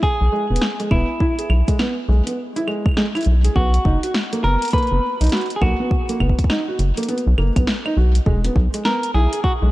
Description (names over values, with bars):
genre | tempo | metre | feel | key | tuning
IDM | 102 BPM | 4/4 | swing 62% on 16ths | B major | A4 = 441 Hz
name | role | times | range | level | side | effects
semi-hollow electric guitar | melody | 0.0-9.5 s | E4 to B4 | -24 LUFS | equal | tape echo
felt-muted upright piano | arpeggios | 0.0-9.7 s | G#3 to G#4 | -24 LUFS | right 1 dB | tape echo
electronic kick drum | drums | 0.0-9.6 s | none | -19 LUFS | equal | none
rubbery square bass | bass | 0.2-9.7 s | E1 to B1 | -16 LUFS | equal | none
electro analog drum machine | drums | 0.6-9.4 s | claves, hi-hat, snare drum | -25 LUFS | equal | tape echo
room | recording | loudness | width
light reverb | dark, warm production | -16 LUFS | side -17 dB against mid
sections
0.0-9.7 A section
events
none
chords
0.0 E; 3.6 Bmaj7(no3); 8.3 E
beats
0.03 0.61 | 1.20 1.79 2.38 2.97 | 3.56 4.14 4.73 5.32 | 5.91 6.50 7.09 7.67 | 8.26 8.85 9.44